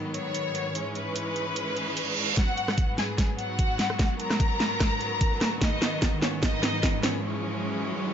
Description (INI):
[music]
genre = heavy wobble dubstep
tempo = 148 BPM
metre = 4/4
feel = swing 54% on 16ths, half-time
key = G# minor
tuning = A4 = 440 Hz
[part]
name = clear studio string section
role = sustained chords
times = 0.0-8.1 s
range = G#2 to C#4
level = -33 LUFS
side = equal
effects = sidechain pumping
[part]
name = rich symphonic violin section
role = melody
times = 0.1-7.2 s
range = C#4 to A#5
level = -30 LUFS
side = left 2 dB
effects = digital delay
[part]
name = dubstep drum kit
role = drums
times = 0.1-7.1 s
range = hi-hat, rim click, snare drum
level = -29 LUFS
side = equal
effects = small room ambience
[part]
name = reverse cymbal and riser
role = sound effects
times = 1.7-8.1 s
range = none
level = -34 LUFS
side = right 3 dB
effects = none
[part]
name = electronic kick drum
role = drums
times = 2.4-6.9 s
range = none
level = -26 LUFS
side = equal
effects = overdrive, small room ambience
[sound]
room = light reverb, studio reverb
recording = nothing above 7.6 kHz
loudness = -24 LUFS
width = side -8 dB against mid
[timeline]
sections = 0.0-2.4 A section; 2.4-8.1 B section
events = reverse cymbal 1.7-2.4; build-up 2.4-8.1; drum fill 2.4-7.2; riser 2.4-8.1; break 7.2-8.1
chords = 0.0 B/G#; 0.8 C#m/G#; 2.4 G#m7; 5.6 B/G#; 7.2 C#m/G#